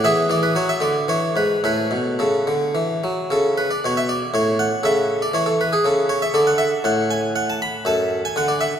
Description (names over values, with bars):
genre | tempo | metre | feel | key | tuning
classical, baroque-style suite movement for harpsichord | 105-122 BPM | 3/4 | rubato | A major | A4 = 440 Hz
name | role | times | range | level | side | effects
harpsichord | solo | 0.0-8.8 s | F#2 to B5 | -17 LUFS | equal | none
room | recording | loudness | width
wet church reverb, RT60 3.3 s | none | -18 LUFS | side -8 dB against mid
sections
0.0-3.3 A section; 3.3-8.8 B section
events
none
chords
0.0 E; 0.5 D/F#; 1.1 E; 1.6 A; 4.8 A/C#; 6.3 D5; 7.9 D/F#